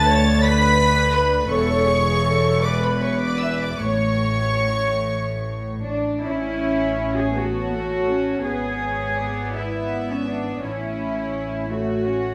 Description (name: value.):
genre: classical, slow romantic movement for string orchestra.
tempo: 48-58 BPM (dotted quarters).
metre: 6/8.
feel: rubato.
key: A major.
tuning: A4 = 440 Hz.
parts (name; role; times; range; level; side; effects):
dark studio violin section; melody; 0.0-12.3 s; C#5 to B6; -30 LUFS; equal; none.
warm symphonic violin section; second line; 0.0-12.3 s; A4 to B5; -29 LUFS; equal; none.
rich studio viola section; accompaniment; 0.0-12.3 s; A3 to C#5; -28 LUFS; equal; none.
rich symphonic double bass section; bass; 0.0-12.3 s; E1 to D2; -27 LUFS; equal; none.
warm symphonic cello section; bass; 0.0-12.3 s; E2 to G#4; -28 LUFS; equal; none.
room: moderate scoring stage reverb, RT60 1.5 s.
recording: none.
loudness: -21 LUFS.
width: mono.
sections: 0.0-6.2 A section; 6.2-12.3 B section.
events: none.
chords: 0.0 D5; 1.5 E5; 3.8 A; 8.4 E7/G#; 10.6 A.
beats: 0.45 | 1.51 2.63 | 3.82 5.03 | 6.25 7.36 | 8.45 9.55 | 10.64 11.71.